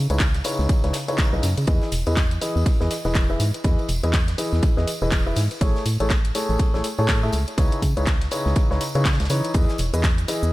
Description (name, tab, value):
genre	piano house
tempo	122 BPM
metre	4/4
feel	swing 59% on 16ths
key	E major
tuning	A4 = 439 Hz
part	organ-like FM bass	bass	0.0-10.5 s	E1 to C#3	-23 LUFS	equal	sidechain pumping
part	bright concert grand piano	riff	0.1-10.5 s	C#3 to E5	-26 LUFS	left 1 dB	sidechain pumping, low-pass filter, tape echo
part	house drum kit	drums	0.1-10.5 s	handclaps, hi-hat, shaker	-29 LUFS	left 1 dB	none
part	tambourine	percussion	0.1-10.5 s	none	-37 LUFS	right 2 dB	none
part	electronic kick drum	drums	0.2-10.2 s	none	-20 LUFS	equal	none
part	modern studio drum kit	drums	0.2-10.4 s	hi-hat, ride cymbal, snare drum	-38 LUFS	right 1 dB	sidechain pumping on cymbals, high-pass filter on cymbals, sidechain pumping on hats, high-pass filter on hats, high-pass filter on snare, high-pass filter on room, tape echo
room	small room ambience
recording	echo-heavy mix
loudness	-19 LUFS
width	side -18 dB against mid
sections	0.0-10.5 A section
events	none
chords	0.0 C#m9; 1.7 Emaj7; 5.6 Amaj7; 7.6 C#m9; 9.5 Emaj7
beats	0.20 0.69 1.19 | 1.68 2.17 2.66 3.15 | 3.64 4.14 4.63 5.12 | 5.61 6.10 6.59 7.09 | 7.58 8.07 8.56 9.05 | 9.55 10.04